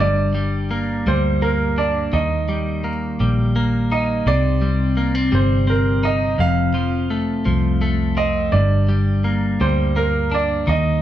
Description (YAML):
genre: pop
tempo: 56 BPM (dotted quarters)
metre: 6/8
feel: straight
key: G minor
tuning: A4 = 440 Hz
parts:
  - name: clear grand piano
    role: melody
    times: 0.0-11.0 s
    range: Bb4 to F5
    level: -22 LUFS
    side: right 4 dB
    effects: none
  - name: twelve-string electric guitar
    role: accompaniment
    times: 0.0-11.0 s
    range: F2 to Eb4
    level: -20 LUFS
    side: left 2 dB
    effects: none
  - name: vintage muted fingered electric bass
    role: bass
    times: 0.0-11.0 s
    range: F1 to Eb2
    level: -20 LUFS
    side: equal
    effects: none
room: moderate large studio reverb, RT60 0.9 s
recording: band playing live in one room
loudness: -16 LUFS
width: side -12 dB against mid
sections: 0.0-11.0 A section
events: none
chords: 0.0 Gm; 2.1 Eb; 4.3 Cm; 6.4 F; 8.5 Gm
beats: 1.07 | 2.13 3.20 | 4.27 5.33 | 6.39 7.46 | 8.54 9.61 | 10.68